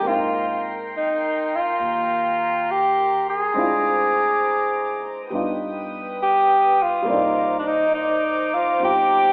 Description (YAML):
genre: jazz ballad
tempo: 69 BPM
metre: 4/4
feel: swing 67% on 8ths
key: C minor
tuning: A4 = 440 Hz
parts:
  - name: clear alto saxophone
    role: melody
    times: 0.0-9.3 s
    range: D4 to Ab4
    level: -21 LUFS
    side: equal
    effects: none
  - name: dark grand piano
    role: accompaniment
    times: 0.0-9.3 s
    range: G3 to G5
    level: -30 LUFS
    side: equal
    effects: none
  - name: warm studio string section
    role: sustained chords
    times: 0.0-9.3 s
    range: Eb4 to Eb6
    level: -31 LUFS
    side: equal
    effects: none
  - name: upright bass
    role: bass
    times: 0.1-9.3 s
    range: G1 to Eb2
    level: -43 LUFS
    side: equal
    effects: none
room: wet recital hall reverb, RT60 1.3 s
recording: recorded in a church or concert hall, telephone sound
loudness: -21 LUFS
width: mono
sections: 0.0-9.3 A section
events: none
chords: 0.1 Abmaj9; 3.6 Dm7b5; 5.3 G7b13; 7.1 Cm9